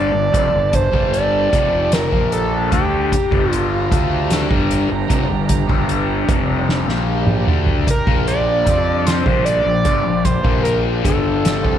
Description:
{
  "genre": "psychedelic rock",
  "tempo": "50 BPM (dotted quarters)",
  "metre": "6/8",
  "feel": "straight",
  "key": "G minor",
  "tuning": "A4 = 440 Hz",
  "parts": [
    { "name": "overdriven synth lead", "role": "melody", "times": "0.0-4.3, 7.9-11.8 s", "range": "F4 to D5", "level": "-19 LUFS", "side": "right 2 dB", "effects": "tape echo" },
    { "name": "rich chamber string section", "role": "sustained chords", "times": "0.0-11.8 s", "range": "G3 to Bb5", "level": "-25 LUFS", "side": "right 12 dB", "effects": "none" },
    { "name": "fuzz guitar", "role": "riff", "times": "0.0-11.8 s", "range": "F2 to F4", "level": "-22 LUFS", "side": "left 11 dB", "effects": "distortion, phaser" },
    { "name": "fuzz fingered electric bass", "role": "bass", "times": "0.0-11.8 s", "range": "F1 to F2", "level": "-22 LUFS", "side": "right 1 dB", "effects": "overdrive" },
    { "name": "soft-mallet drum kit", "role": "drums", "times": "0.3-11.8 s", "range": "hi-hat, kick drum, snare drum, toms", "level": "-20 LUFS", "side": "equal", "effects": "none" }
  ],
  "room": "light reverb, small room ambience",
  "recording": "1960s-style stereo with parts hard left and right",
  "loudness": "-14 LUFS",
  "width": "side -10 dB against mid",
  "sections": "0.0-11.8 A section",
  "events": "analog synth lead solo 0.0-11.8; drum fill 6.7-7.9",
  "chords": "0.0 Gmadd9; 8.1 Bb6"
}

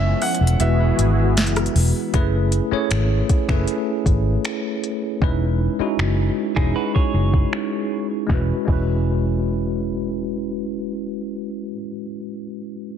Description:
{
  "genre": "contemporary R&B",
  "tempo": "78 BPM",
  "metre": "4/4",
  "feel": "straight",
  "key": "E major",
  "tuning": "A4 = 440 Hz",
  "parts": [
    { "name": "clear baby grand piano", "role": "melody", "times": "0.0-1.7 s", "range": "E5 to F#5", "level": "-27 LUFS", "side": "right 2 dB", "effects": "ping-pong delay" },
    { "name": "bell-like tine electric piano", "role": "accompaniment", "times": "0.0-13.0 s", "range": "G#3 to C#5", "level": "-23 LUFS", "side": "equal", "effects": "medium stereo tremolo" },
    { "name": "warm analog pad", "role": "sustained chords", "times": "0.0-2.1 s", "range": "E3 to G#4", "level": "-28 LUFS", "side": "left 1 dB", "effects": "chorus" },
    { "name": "vintage muted fingered electric bass", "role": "bass", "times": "0.0-11.7 s", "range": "E1 to G#1", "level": "-20 LUFS", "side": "equal", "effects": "none" },
    { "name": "smooth R&B drum kit", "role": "drums", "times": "0.2-8.9 s", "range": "crash cymbal, finger snaps, hi-hat, kick drum, rim click, snare drum", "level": "-22 LUFS", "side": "equal", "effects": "overdrive" },
    { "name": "direct-recorded clean electric guitar", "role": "arpeggios", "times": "6.6-8.1 s", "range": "D#4 to C#5", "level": "-30 LUFS", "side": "right 5 dB", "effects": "ping-pong delay" }
  ],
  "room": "light reverb",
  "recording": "dense, heavily limited modern master, low-pass filter",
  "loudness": "-18 LUFS",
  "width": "side -8 dB against mid",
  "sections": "0.0-2.1 A section; 2.1-8.3 B section; 8.3-11.4 C section",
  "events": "break 0.0-2.1",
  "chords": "0.0 E69; 0.6 Eadd9; 2.1 F#m11; 5.2 C#m7/E; 8.3 E6"
}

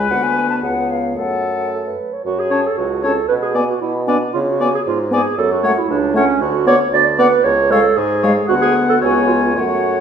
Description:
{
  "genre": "quick classical-period movement for wind quintet",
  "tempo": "115 BPM",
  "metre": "2/4",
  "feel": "straight",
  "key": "F# minor",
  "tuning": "A4 = 439 Hz",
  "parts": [
    { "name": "hollow concert flute", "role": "melody", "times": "0.0-10.0 s", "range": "E#5 to A5", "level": "-23 LUFS", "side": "left 7 dB", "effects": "none" },
    { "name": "warm oboe", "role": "second line", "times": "0.0-10.0 s", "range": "A4 to F#5", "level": "-22 LUFS", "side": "left 4 dB", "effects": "none" },
    { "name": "dark clarinet", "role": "accompaniment", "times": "0.0-10.0 s", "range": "C#4 to D5", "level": "-18 LUFS", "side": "right 5 dB", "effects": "none" },
    { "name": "mellow French horn", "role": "accompaniment", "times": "0.0-10.0 s", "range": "G#3 to C#4", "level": "-22 LUFS", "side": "left 1 dB", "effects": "none" },
    { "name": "warm bassoon", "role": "bass", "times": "0.0-10.0 s", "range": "C#2 to C#3", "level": "-20 LUFS", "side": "right 1 dB", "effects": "none" }
  ],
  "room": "wet recital hall reverb, RT60 1.5 s",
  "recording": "minimal, uncompressed stereo recording",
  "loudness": "-14 LUFS",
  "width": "side -7 dB against mid",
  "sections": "0.0-2.2 A section; 2.2-10.0 B section",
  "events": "none",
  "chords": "0.1 Bm/D; 0.6 C#7; 1.2 F#m; 3.3 G#m/B; 4.3 C#5; 5.4 F#m; 6.4 Bm/D; 7.4 C#; 8.5 Bm/D; 9.0 C#7"
}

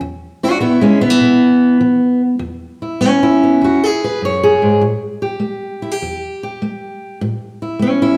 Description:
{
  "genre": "acoustic country blues, solo or duo",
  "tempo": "100 BPM",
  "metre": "4/4",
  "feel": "swing 67% on 8ths",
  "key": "unclear",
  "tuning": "A4 = 440 Hz",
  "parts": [
    { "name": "fingerpicked steel-string acoustic guitar", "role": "solo", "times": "0.0-8.2 s", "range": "E2 to C#5", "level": "-15 LUFS", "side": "equal", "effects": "none" }
  ],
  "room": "wet recital hall reverb, RT60 1.3 s",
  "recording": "recorded in a church or concert hall",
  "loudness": "-15 LUFS",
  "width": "mono",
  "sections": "0.0-8.2 A section",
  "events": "none",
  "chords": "0.0 E; 4.8 A7(no3)"
}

